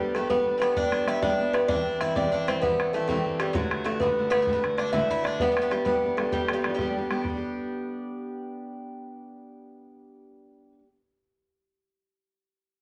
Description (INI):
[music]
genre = celtic folk, Celtic slide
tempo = 130 BPM (dotted quarters)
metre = 12/8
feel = straight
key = G major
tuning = A4 = 436 Hz
[part]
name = kalimba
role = melody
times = 0.0-6.9 s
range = F#4 to E5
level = -28 LUFS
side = equal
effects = none
[part]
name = Irish bouzouki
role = second line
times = 0.0-6.9 s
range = F#3 to E4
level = -35 LUFS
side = equal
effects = none
[part]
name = picked steel-string acoustic guitar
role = accompaniment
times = 0.0-10.9 s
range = D2 to G4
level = -34 LUFS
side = equal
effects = none
[part]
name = bodhran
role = percussion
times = 0.1-7.4 s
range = none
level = -36 LUFS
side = equal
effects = none
[sound]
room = wet studio reverb, RT60 0.8 s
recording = none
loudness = -26 LUFS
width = mono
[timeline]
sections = 0.0-7.3 A section; 7.3-10.9 B section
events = none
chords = 0.0 G; 1.7 C; 3.6 D; 5.4 G